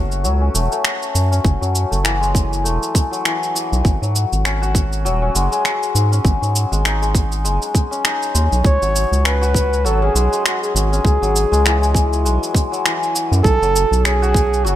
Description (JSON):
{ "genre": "organic downtempo", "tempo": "100 BPM", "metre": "4/4", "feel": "swing 57% on 16ths", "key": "F# dorian", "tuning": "A4 = 440 Hz", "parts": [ { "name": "santur", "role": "arpeggios", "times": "0.0-14.8 s", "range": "E3 to F#4", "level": "-21 LUFS", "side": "left 3 dB", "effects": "low-pass filter, tape echo" }, { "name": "round analog bass", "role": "bass", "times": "0.0-14.8 s", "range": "D#1 to G#2", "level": "-18 LUFS", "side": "equal", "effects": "sidechain pumping" }, { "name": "electronic shaker and finger snaps", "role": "drums", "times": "0.1-14.8 s", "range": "none", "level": "-22 LUFS", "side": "equal", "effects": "none" }, { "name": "electronic kick drum", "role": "drums", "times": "1.4-14.5 s", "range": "none", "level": "-16 LUFS", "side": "equal", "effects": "none" }, { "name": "trumpet with bucket mute", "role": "melody", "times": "8.7-14.8 s", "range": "F#4 to C#5", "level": "-20 LUFS", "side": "right 2 dB", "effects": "tape echo" } ], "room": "light reverb, digital ambience", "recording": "none", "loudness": "-15 LUFS", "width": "side -12 dB against mid", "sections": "0.0-14.8 A section", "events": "filter sweep on santur 0.0-14.8", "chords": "0.0 F#m9; 3.8 G#7(no3); 8.6 C#m; 13.4 B7sus2" }